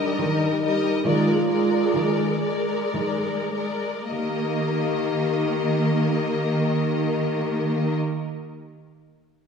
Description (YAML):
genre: classical, slow romantic movement for symphony orchestra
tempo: 50-77 BPM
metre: 3/4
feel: rubato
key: Eb major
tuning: A4 = 440 Hz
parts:
  - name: rich studio violin section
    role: melody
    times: 0.0-7.9 s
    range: D5 to Eb5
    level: -31 LUFS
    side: left 6 dB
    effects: none
  - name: rich studio violin section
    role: second line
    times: 0.0-8.0 s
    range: Bb4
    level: -31 LUFS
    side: left 4 dB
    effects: none
  - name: rich studio viola section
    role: accompaniment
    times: 0.0-7.9 s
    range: G3 to Bb3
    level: -27 LUFS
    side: equal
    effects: none
  - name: mellow French horn section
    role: sustained chords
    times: 0.0-7.9 s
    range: D4 to Ab4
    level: -27 LUFS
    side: left 1 dB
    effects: none
  - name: rich studio cello section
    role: bass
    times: 0.0-7.9 s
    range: Eb3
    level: -26 LUFS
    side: right 2 dB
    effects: none
room: wet scoring stage reverb, RT60 2.0 s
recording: heard from further back in the room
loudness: -21 LUFS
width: side -6 dB against mid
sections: 0.0-4.1 A section; 4.1-9.5 B section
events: slowing down 0.0-4.1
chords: 0.0 Eb; 1.0 Bb7/Eb; 4.1 Eb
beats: 0.22 | 1.04 1.95 2.96 | 4.11 5.28 6.48 | 7.68